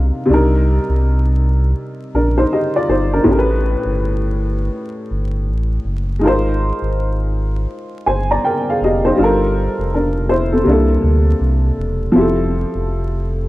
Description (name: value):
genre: lo-fi hip hop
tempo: 81 BPM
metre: 4/4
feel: swing 62% on 16ths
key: unclear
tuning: A4 = 440 Hz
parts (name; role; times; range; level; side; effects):
- warm upright piano; accompaniment; 0.0-13.5 s; A2 to Bb5; -17 LUFS; equal; low-pass filter
- sub bass with octave; bass; 0.0-13.5 s; E1 to D2; -17 LUFS; equal; none
room: light reverb, small room reverb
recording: dark, warm production, vinyl crackle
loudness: -14 LUFS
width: side -17 dB against mid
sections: 0.3-13.5 A section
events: none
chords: 0.3 Cm9; 3.3 A9; 6.2 Ab69; 9.2 Gm9; 10.7 C13; 12.1 Fmaj9